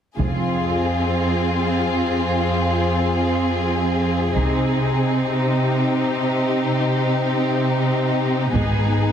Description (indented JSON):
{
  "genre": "cinematic, epic orchestral film score",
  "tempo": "free time",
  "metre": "none",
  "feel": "none",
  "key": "F minor",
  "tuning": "A4 = 440 Hz",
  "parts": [
    { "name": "warm symphonic violin section", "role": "melody", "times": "0.2-9.1 s", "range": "G4 to Ab4", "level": "-26 LUFS", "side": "left 4 dB", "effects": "none" },
    { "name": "rich symphonic violin section", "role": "second line", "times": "0.2-9.1 s", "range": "Eb4 to F4", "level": "-25 LUFS", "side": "left 3 dB", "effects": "none" },
    { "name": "warm studio viola section", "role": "accompaniment", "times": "0.2-9.1 s", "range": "Cb4 to C4", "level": "-24 LUFS", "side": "right 1 dB", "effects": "none" },
    { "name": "rich symphonic cello section", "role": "bass", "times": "0.2-9.1 s", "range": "F2 to C3", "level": "-22 LUFS", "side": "right 1 dB", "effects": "none" },
    { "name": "rich symphonic double bass section", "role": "bass", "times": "0.2-0.7, 4.4-4.9, 8.5-9.0 s", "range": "F1 to C2", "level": "-26 LUFS", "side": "right 3 dB", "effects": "none" },
    { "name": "taiko ensemble", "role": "drums", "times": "0.2-1.2, 4.4-5.4, 8.5-9.1 s", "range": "none", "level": "-27 LUFS", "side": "equal", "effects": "none" }
  ],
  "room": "moderate scoring stage reverb, RT60 1.6 s",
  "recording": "heavily compressed radio sound, multiband compression",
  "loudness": "-18 LUFS",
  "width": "side -8 dB against mid",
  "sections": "0.2-9.1 A section",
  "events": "build-up 0.2-9.1",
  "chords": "0.2 Fm; 4.4 Cm; 8.6 Abm",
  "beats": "free time"
}